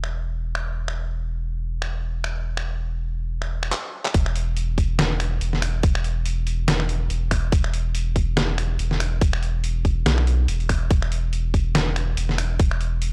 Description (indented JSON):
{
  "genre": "deep dubstep",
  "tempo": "142 BPM",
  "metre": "4/4",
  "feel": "swing 56% on 16ths, half-time",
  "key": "unclear",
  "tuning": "A4 = 440 Hz",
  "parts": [
    { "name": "saturated sub bass", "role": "bass", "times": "0.0-13.1 s", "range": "E1 to B1", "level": "-26 LUFS", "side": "equal", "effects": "none" },
    { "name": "trip hop sampler-style drum kit", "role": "drums", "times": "0.0-13.1 s", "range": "finger snaps, handclaps, hi-hat, snare drum", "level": "-28 LUFS", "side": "equal", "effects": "none" },
    { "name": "electronic kick drum", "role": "drums", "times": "4.1-12.7 s", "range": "none", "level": "-22 LUFS", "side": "equal", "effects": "overdrive" }
  ],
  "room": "little or no reverb",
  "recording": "dry, gritty hardware recording, transformer saturation, cassette tape",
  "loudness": "-24 LUFS",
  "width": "mono",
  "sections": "0.0-4.1 A section; 4.1-13.1 B section",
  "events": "drum fill 3.7-4.1; drop 4.1-13.1",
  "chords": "none",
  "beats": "0.34 | 0.76 1.19 1.61 2.03 | 2.45 2.88 3.30 3.72 | 4.14 4.57 4.99 5.41 | 5.83 6.26 6.68 7.10 | 7.52 7.95 8.37 8.79 | 9.21 9.64 10.06 10.48 | 10.90 11.33 11.75 12.17 | 12.59 13.02"
}